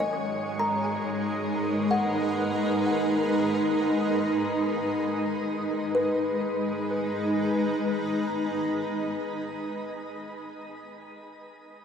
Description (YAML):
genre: ambient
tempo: free time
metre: none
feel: none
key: G# minor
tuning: A4 = 439 Hz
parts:
  - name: granular cloud pad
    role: sustained chords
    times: 0.0-10.0 s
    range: G#3 to A#5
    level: -26 LUFS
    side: equal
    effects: built-in reverb
  - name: kalimba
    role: arpeggios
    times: 0.0-9.5 s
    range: D#3 to A#5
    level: -32 LUFS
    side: left 1 dB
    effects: tape echo
room: wet shimmer reverb, RT60 8.3 s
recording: none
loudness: -24 LUFS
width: side -7 dB against mid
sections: 0.0-5.9 A section; 5.9-9.8 B section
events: none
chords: 0.0 G#m7; 5.9 G#m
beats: free time